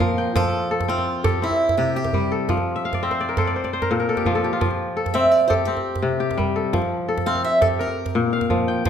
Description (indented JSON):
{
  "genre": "west african traditional, West African string and xylophone music",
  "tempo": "113 BPM (dotted quarters)",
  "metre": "12/8",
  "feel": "straight",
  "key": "F major",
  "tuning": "A4 = 440 Hz",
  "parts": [
    { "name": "picked swing-style acoustic guitar", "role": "melody", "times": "0.0-8.5 s", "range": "E4 to F5", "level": "-22 LUFS", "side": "right 2 dB", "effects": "none" },
    { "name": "kora", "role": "arpeggios", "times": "0.0-8.9 s", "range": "Bb2 to G5", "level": "-21 LUFS", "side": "left 3 dB", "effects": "none" },
    { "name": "djembe", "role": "percussion", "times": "0.0-8.9 s", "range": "none", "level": "-26 LUFS", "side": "right 3 dB", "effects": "none" }
  ],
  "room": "wet recital hall reverb, RT60 1.4 s",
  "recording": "none",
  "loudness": "-19 LUFS",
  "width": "side -8 dB against mid",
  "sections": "0.0-8.9 A section",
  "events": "kora fill 2.8-4.6",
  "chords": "0.4 F; 1.4 C; 2.5 F; 3.5 Bb5; 4.6 F; 5.7 C5; 6.7 F; 7.8 Bb5"
}